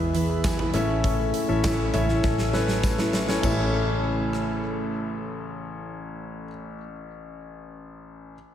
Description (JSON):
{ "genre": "piano-driven pop", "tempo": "100 BPM", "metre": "4/4", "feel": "straight", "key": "A major", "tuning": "A4 = 440 Hz", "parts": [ { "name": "warm concert grand piano", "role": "accompaniment", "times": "0.0-8.3 s", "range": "A1 to B5", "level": "-29 LUFS", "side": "left 4 dB", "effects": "tape echo" }, { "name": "warm analog pad", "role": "sustained chords", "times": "0.0-6.5 s", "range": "B2 to A4", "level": "-35 LUFS", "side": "left 1 dB", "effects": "chorus" }, { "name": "fingerpicked steel-string acoustic guitar", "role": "riff", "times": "0.0-7.1 s", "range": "E3 to C#5", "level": "-30 LUFS", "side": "right 2 dB", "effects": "tape echo" }, { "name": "vintage muted fingered electric bass", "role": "bass", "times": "0.0-6.5 s", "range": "A1 to E2", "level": "-28 LUFS", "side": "equal", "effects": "none" }, { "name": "huge arena drum kit", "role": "drums", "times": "0.1-4.5 s", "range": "crash cymbal, handclaps, hi-hat, kick drum, rim click, snare drum, toms", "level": "-28 LUFS", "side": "equal", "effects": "tape echo" }, { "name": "tambourine", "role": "percussion", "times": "0.4-3.7 s", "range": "none", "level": "-45 LUFS", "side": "left 5 dB", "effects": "none" } ], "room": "light reverb, studio reverb", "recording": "echo-heavy mix", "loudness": "-22 LUFS", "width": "side -10 dB against mid", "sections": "0.0-3.4 A section; 3.4-5.8 B section", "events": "drum fill 2.2-3.4", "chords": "0.0 E; 0.7 A" }